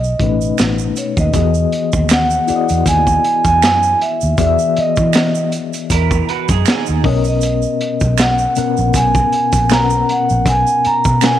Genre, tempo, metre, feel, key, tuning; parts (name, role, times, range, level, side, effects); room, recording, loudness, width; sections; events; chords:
R&B, neo-soul; 79 BPM; 4/4; swing 55% on 16ths; E lydian; A4 = 440 Hz
vibraphone with soft mallets; melody; 0.0-11.4 s; C#5 to A#5; -16 LUFS; right 2 dB
vintage muted fingered electric bass; bass; 0.0-11.4 s; A1 to E3; -17 LUFS; right 1 dB
tube shaker and finger snaps; percussion; 0.0-11.4 s; -26 LUFS; right 15 dB
mellow reed electric piano; accompaniment; 0.2-11.4 s; B2 to F#5; -20 LUFS; left 10 dB; fast tremolo
crunchy breakbeat drum kit; drums; 0.2-11.4 s; hi-hat, kick drum, snare drum; -18 LUFS; right 1 dB
electric guitar through a small old amp; second line; 5.9-7.0 s; D#4 to B4; -21 LUFS; right 14 dB; lush chorus
light reverb, studio ambience; 1960s-style stereo with parts hard left and right; -12 LUFS; side -11 dB against mid
0.0-1.3 A section; 1.3-11.4 B section
0.0 B9; 1.3 Emaj9; 7.0 Bmaj9